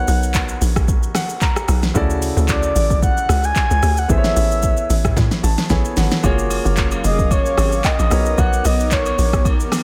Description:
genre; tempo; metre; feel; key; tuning
amapiano; 112 BPM; 4/4; swing 55% on 16ths; unclear; A4 = 440 Hz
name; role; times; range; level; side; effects
breathy flute-like synth lead; melody; 0.0-9.5 s; C#5 to G#5; -24 LUFS; equal; chorus
clear concert grand piano; accompaniment; 0.0-9.8 s; C#3 to A#5; -28 LUFS; equal; none
tight log drum bass; bass; 0.0-9.7 s; E#1 to A2; -21 LUFS; equal; none
smooth R&B drum kit; drums; 0.1-9.8 s; handclaps, hi-hat, kick drum, rim click, shaker, snare drum, toms; -22 LUFS; equal; none
airy breathy pad; sustained chords; 6.5-9.8 s; F#3 to E#5; -29 LUFS; equal; chorus, sidechain pumping
agogo bells and woodblock; percussion; 6.2-9.8 s; none; -32 LUFS; equal; none
room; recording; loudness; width
little or no reverb; none; -17 LUFS; mono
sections
0.0-9.8 A section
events
grand piano fill 0.9-2.0, 5.2-6.2; drum fill 5.2-6.2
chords
0.0 Bmaj9; 2.0 Dmaj9; 4.1 Amaj9; 6.2 F#maj9; 8.1 Bmaj9

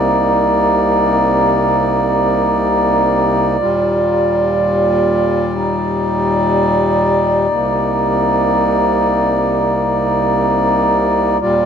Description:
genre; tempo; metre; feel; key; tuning
hip hop; free time; none; none; unclear; A4 = 441 Hz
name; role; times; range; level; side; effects
hand-pumped harmonium; solo; 0.0-11.7 s; C2 to D5; -12 LUFS; equal; none
room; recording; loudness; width
moderate huge ambient reverb, RT60 6.3 s; dark, warm production; -12 LUFS; side -7 dB against mid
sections
0.0-11.7 A section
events
none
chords
0.0 Cm7; 3.6 Ebmaj7; 7.5 Cm7

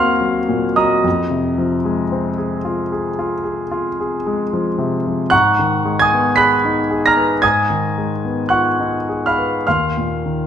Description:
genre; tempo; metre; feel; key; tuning
classical, impressionist solo piano; 56 BPM; 4/4; rubato; unclear; A4 = 440 Hz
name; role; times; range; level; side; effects
clear concert grand piano; solo; 0.0-10.5 s; Eb2 to Cb7; -15 LUFS; equal; none
room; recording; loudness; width
moderate recital hall reverb, RT60 1.5 s; none; -15 LUFS; side -8 dB against mid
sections
0.0-10.5 A section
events
none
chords
0.0 Ebm6; 1.1 Fm7; 5.3 Abm7; 7.4 Abm6; 9.7 Ebsus2

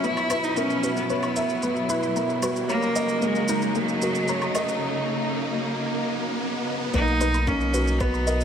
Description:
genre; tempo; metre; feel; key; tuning
piano and strings electronica; 113 BPM; 4/4; straight; B major; A4 = 440 Hz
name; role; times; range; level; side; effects
clear cello; melody; 0.0-8.4 s; F#3 to E4; -26 LUFS; equal; none
rich symphonic string section; sustained chords; 0.0-8.4 s; B2 to E4; -31 LUFS; equal; none
warbly dusty pluck; arpeggios; 0.0-8.4 s; A#4 to B5; -33 LUFS; left 3 dB; chorus, sidechain pumping, tape echo
felt-muted upright piano; riff; 0.0-8.4 s; A#3 to E5; -28 LUFS; equal; tape echo
shaker and woodblock; drums; 0.0-8.4 s; none; -34 LUFS; right 2 dB; none
riser; sound effects; 0.1-6.9 s; none; -31 LUFS; equal; none
round analog bass; bass; 6.9-8.4 s; B1; -25 LUFS; equal; tube saturation, sidechain pumping
electronic kick drum; drums; 6.9-8.1 s; none; -27 LUFS; equal; none
room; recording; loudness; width
wet lush hall reverb, RT60 2.1 s; none; -22 LUFS; side -8 dB against mid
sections
0.0-6.9 A section; 6.9-8.4 B section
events
build-up 0.0-6.9; riser 0.1-6.9; break 4.8-6.9; drop 6.9-8.4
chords
0.0 F#7sus4; 2.7 D#m7; 6.9 Bmaj7

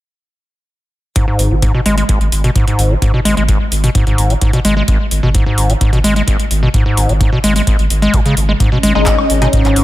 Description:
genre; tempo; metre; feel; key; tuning
acid house; 129 BPM; 4/4; straight; G# minor; A4 = 439 Hz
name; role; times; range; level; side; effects
acid bass, square; riff; 1.2-9.8 s; G#1 to G#3; -14 LUFS; equal; overdrive, tape echo
booming analog drum machine; drums; 1.2-9.8 s; handclaps, hi-hat, woodblock; -21 LUFS; equal; none
electronic kick drum; drums; 1.2-9.6 s; none; -15 LUFS; equal; none
round analog bass; bass; 1.4-9.8 s; G#1; -15 LUFS; equal; sidechain pumping
lush unison pad; sustained chords; 8.6-9.8 s; C#4; -18 LUFS; left 1 dB; chorus, sidechain pumping
band-passed chord stab; stabs; 9.0-9.5 s; G#3 to D#5; -16 LUFS; left 3 dB; phaser, ensemble chorus, cassette tape, tape echo
room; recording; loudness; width
light reverb, digital ambience; none; -10 LUFS; side -16 dB against mid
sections
1.2-9.8 A section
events
none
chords
1.2 G#5

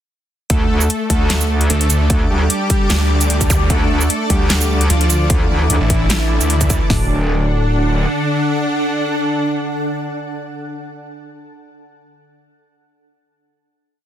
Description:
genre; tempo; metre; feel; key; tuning
heavy wobble dubstep; 150 BPM; 4/4; swing 54% on 16ths, half-time; unclear; A4 = 439 Hz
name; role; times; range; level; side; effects
soft supersaw; melody; 0.5-10.9 s; E3 to A4; -21 LUFS; equal; digital delay
evolving wavetable pad; sustained chords; 1.0-10.9 s; D3 to D6; -24 LUFS; left 1 dB; ensemble chorus, built-in reverb, phaser, sidechain pumping
metallic wobble bass; bass; 0.5-8.1 s; D1 to D2; -17 LUFS; equal; chorus, overdrive
big-room dance drum kit; drums; 0.5-7.0 s; hi-hat, kick drum, snare drum; -17 LUFS; equal; overdrive
dubstep drum kit; drums; 0.5-6.8 s; handclaps, hi-hat, shaker, snare drum; -19 LUFS; right 1 dB; none
granular cloud pad; texture; 1.7-10.9 s; D4 to A5; -27 LUFS; right 2 dB; built-in reverb, sidechain pumping
snarling distorted saw bass; bass; 1.7-6.8 s; A1 to D2; -16 LUFS; equal; distortion, overdrive
zap; sound effects; 3.5-3.6 s; none; -27 LUFS; equal; none
room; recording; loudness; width
light reverb; dense, heavily limited modern master; -14 LUFS; side -11 dB against mid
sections
0.5-6.9 drop; 6.9-10.1 final chord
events
drop 0.5-6.9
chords
0.5 D5; 6.9 D

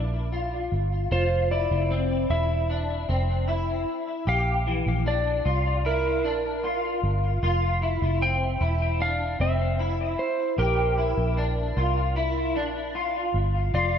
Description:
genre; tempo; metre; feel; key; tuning
dream pop; 76 BPM; 4/4; straight; Bb lydian; A4 = 442 Hz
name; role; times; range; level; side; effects
clean lap steel guitar; melody; 0.0-14.0 s; Bb4 to G5; -29 LUFS; right 1 dB; ping-pong delay
electric guitar at the edge of break-up; arpeggios; 0.0-14.0 s; E3 to G4; -27 LUFS; left 2 dB; ensemble chorus, ping-pong delay
vintage muted fingered electric bass; bass; 0.0-14.0 s; E1 to C2; -26 LUFS; equal; none
room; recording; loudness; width
moderate plate reverb, RT60 2.3 s; dreamy mix soaked in reverb; -23 LUFS; side -8 dB against mid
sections
0.0-1.1 A section; 1.1-14.0 B section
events
none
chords
0.0 Bb; 1.1 F5; 4.3 Bb6; 7.4 F5; 10.6 Bb6

